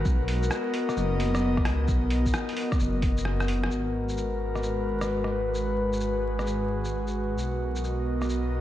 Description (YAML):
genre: future garage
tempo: 131 BPM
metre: 4/4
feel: swing 66% on 16ths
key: G# minor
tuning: A4 = 440 Hz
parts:
  - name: airy breathy pad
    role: sustained chords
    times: 0.0-8.6 s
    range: G#3 to D#5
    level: -28 LUFS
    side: left 1 dB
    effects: chorus, vintage 12-bit sampler grit, sidechain pumping
  - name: dark detuned saw bass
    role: bass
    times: 0.0-8.6 s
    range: F#1 to C#2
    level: -29 LUFS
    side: equal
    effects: sidechain pumping
  - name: electronic kick drum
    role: drums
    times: 0.1-3.1 s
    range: none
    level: -26 LUFS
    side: equal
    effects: none
  - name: lo-fi sampler-style drum kit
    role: drums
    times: 0.1-8.4 s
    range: hi-hat, rim click, shaker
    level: -36 LUFS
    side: equal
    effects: overdrive
room: wet lush hall reverb, RT60 1.8 s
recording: dreamy mix soaked in reverb, vinyl crackle, nothing above 10.3 kHz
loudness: -25 LUFS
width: side -13 dB against mid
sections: 0.0-3.7 A section; 3.7-8.6 B section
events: drum fill 3.3-3.7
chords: 0.1 Bmaj7; 3.7 G#m9; 7.4 Bmaj7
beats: | 0.05 0.51 0.97 1.43 | 1.88 2.34 2.80 3.26 | 3.72 4.17 4.63 5.09 | 5.55 6.01 6.46 6.92 | 7.38 7.84 8.30